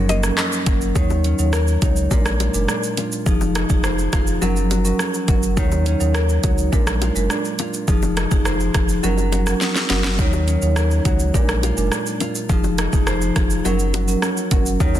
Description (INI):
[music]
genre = dancehall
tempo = 104 BPM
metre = 4/4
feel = straight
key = unclear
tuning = A4 = 440 Hz
[part]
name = marimba with medium mallets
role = accompaniment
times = 0.0-15.0 s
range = F3 to Db5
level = -23 LUFS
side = right 2 dB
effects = none
[part]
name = nylon-string guitar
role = arpeggios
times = 0.0-15.0 s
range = Gb2 to C5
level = -26 LUFS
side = left 3 dB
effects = none
[part]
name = warm sub bass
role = bass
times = 0.0-15.0 s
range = F1 to Eb2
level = -21 LUFS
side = equal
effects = none
[part]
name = afro-pop drum kit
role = drums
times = 0.1-15.0 s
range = handclaps, hi-hat, kick drum, rim click, shaker, snare drum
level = -20 LUFS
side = equal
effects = soft clipping on snare
[part]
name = bongos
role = percussion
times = 0.1-15.0 s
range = none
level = -32 LUFS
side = left 9 dB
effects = none
[sound]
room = light reverb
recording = dense, heavily limited modern master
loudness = -16 LUFS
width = side -12 dB against mid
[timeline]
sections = 1.0-15.0 A section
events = drum fill 9.6-10.2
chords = 0.0 Gb; 1.0 Ebm7; 2.1 Bb7; 3.3 Fm7; 4.4 Gb; 5.6 Ebm7; 6.7 Bb7; 7.9 Fm7; 9.0 Gb; 10.2 Ebm7; 11.3 Bb7; 12.5 Fm7; 13.6 Gb